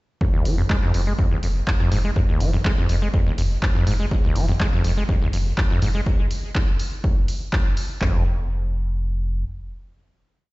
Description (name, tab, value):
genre	acid house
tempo	123 BPM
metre	4/4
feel	straight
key	F minor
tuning	A4 = 440 Hz
part	acid bass, saw	riff	0.2-8.2 s	Eb2 to Ab3	-24 LUFS	equal	overdrive, sidechain pumping, digital delay
part	punchy analog drum machine	drums	0.2-8.1 s	handclaps, kick drum, toms	-21 LUFS	equal	none
part	warm sub bass	bass	0.5-9.4 s	F1	-22 LUFS	equal	tube saturation, sidechain pumping
part	punchy analog drum machine	drums	0.5-7.9 s	handclaps, hi-hat	-31 LUFS	equal	none
room	digital ambience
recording	played on a big sound system in a bare room, stone room reverb, nothing above 7.9 kHz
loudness	-19 LUFS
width	side -21 dB against mid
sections	0.2-8.0 groove; 8.0-10.5 final note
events	none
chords	none